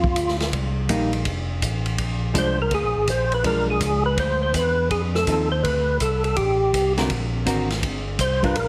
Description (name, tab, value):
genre	soul jazz organ trio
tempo	164 BPM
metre	4/4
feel	swing 66% on 8ths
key	unclear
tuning	A4 = 439 Hz
part	percussive tonewheel organ	melody	0.0-8.7 s	F4 to C5	-24 LUFS	equal	slow rotary speaker, chorus vibrato
part	tonewheel organ	bass	0.0-8.7 s	F1 to F2	-27 LUFS	equal	chorus vibrato, slow rotary speaker
part	vintage drum kit	drums	0.0-8.7 s	hi-hat, kick drum, ride cymbal, snare drum	-30 LUFS	equal	none
part	hollow-body jazz guitar	accompaniment	0.9-8.6 s	D3 to Bb4	-29 LUFS	equal	none
room	moderate large studio reverb, RT60 1.4 s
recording	heavily compressed radio sound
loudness	-22 LUFS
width	mono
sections	0.0-8.7 A section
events	none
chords	0.0 N.C.; 0.5 Cm7; 1.3 F; 2.0 Bb7; 3.4 Bdim7; 4.9 F7; 6.4 Am7; 7.1 Daug7; 7.8 Gm7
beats	0.16 | 0.53 0.89 1.26 1.62 | 1.99 2.35 2.71 3.08 | 3.44 3.81 4.17 4.54 | 4.91 5.27 5.63 6.00 | 6.37 6.73 7.10 7.46 | 7.83 8.19 8.56